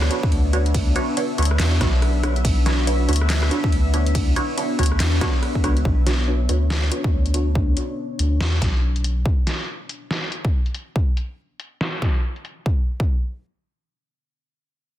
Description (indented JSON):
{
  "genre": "deep dubstep",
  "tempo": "141 BPM",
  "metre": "4/4",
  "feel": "swing 60% on 16ths, half-time",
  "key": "B minor",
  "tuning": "A4 = 436 Hz",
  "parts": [
    { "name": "deep dark ambient pad", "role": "sustained chords", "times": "0.0-9.2 s", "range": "B3 to E5", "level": "-27 LUFS", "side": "left 2 dB", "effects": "chorus, built-in reverb" },
    { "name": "soft dub sub bass", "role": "bass", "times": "0.0-9.2 s", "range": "B1 to E2", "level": "-20 LUFS", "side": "equal", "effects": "none" },
    { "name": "dubstep drum kit", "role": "drums", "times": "0.0-12.5 s", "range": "handclaps, hi-hat, ride cymbal, rim click, snare drum", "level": "-27 LUFS", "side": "equal", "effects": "low-pass filter on hats, low-pass filter on cymbals, low-pass filter on snare, low-pass filter on room" },
    { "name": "filtered dub chord stab", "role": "stabs", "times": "0.1-7.5 s", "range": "D4 to C#5", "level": "-27 LUFS", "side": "right 3 dB", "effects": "phaser, lush chorus, dub echo" },
    { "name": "electronic kick drum", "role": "drums", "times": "0.2-13.1 s", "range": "none", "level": "-20 LUFS", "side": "equal", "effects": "none" }
  ],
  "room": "light reverb",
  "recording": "dense, heavily limited modern master",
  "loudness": "-18 LUFS",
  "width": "side -12 dB against mid",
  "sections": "0.0-5.9 A section; 5.9-12.7 B section; 12.7-15.0 C section",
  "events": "drop 0.0-5.9; filter sweep on drum 5.9-12.7; filter sweep on ambient pad 5.9-9.3",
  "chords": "0.0 Bmadd9; 12.7 N.C.",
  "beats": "0.32 | 0.74 1.17 1.60 2.02 | 2.45 2.87 3.30 3.72 | 4.15 4.58 5.00 5.43 | 5.85 6.28 6.70 7.13 | 7.55 7.98 8.40 8.83 | 9.26 9.68 10.11 10.53 | 10.96 11.38 11.81 12.23 | 12.66 13.09"
}